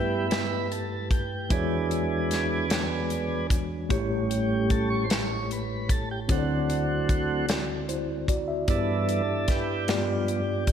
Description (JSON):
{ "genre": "slow gospel", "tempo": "50 BPM (dotted quarters)", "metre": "6/8", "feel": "straight", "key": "G major", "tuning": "A4 = 441 Hz", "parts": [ { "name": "mellow tine electric piano", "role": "accompaniment", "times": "0.0-10.7 s", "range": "A1 to E5", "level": "-28 LUFS", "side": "left 1 dB", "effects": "medium stereo tremolo" }, { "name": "tonewheel organ", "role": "sustained chords", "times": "0.0-10.7 s", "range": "G2 to C#5", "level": "-29 LUFS", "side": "right 3 dB", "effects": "slow rotary speaker" }, { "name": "modern studio drum kit", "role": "drums", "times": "0.3-10.7 s", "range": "hi-hat, kick drum, snare drum", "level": "-28 LUFS", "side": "equal", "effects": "none" } ], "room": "wet plate reverb, RT60 2.7 s", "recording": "dreamy mix soaked in reverb", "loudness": "-24 LUFS", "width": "side -8 dB against mid", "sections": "0.0-10.7 A section", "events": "tonewheel organ solo 0.0-10.7", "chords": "0.0 G69; 1.5 E13; 3.9 A7; 6.3 D9; 8.7 G6; 9.9 G7" }